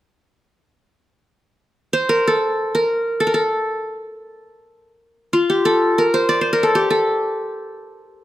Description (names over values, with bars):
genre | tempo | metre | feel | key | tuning
Turkish makam ensemble | free time | none | none | A makam kurdi | A4 = 439 Hz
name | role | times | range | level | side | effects
qanun | solo | 1.9-8.2 s | F4 to D5 | -16 LUFS | equal | none
room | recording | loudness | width
light reverb | close, detailed microphones | -16 LUFS | side -14 dB against mid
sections
1.5-8.2 A section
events
none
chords
none